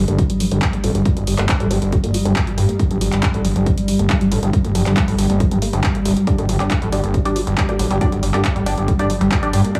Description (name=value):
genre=driving peak-time techno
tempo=138 BPM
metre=4/4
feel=straight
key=unclear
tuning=A4 = 441 Hz
part: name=resonant blip pluck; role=riff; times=0.0-9.8 s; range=F#3 to G4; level=-25 LUFS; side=equal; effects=phaser, sidechain pumping, tape echo
part: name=gritty driven synth bass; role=bass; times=0.0-9.6 s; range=D1 to G2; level=-21 LUFS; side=equal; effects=sidechain pumping
part: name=metallic inharmonic drone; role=drone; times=0.1-9.8 s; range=G2 to G3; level=-26 LUFS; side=equal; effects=chorus, built-in reverb, sidechain pumping
part: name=punchy analog drum machine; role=drums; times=0.1-9.8 s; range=handclaps, hi-hat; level=-28 LUFS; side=equal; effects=sidechain pumping on hats
part: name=electronic kick drum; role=drums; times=0.2-9.8 s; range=none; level=-22 LUFS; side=equal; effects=none
part: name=filtered dub chord stab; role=stabs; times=6.3-9.8 s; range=D4 to D5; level=-26 LUFS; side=equal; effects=phaser, cassette tape, sidechain pumping, tape echo
room=moderate spring reverb, RT60 1.7 s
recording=echo-heavy mix, small room ambience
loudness=-18 LUFS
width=mono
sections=0.0-9.8 A section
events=filter sweep on synth arpeggio sound 0.0-9.8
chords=0.0 G5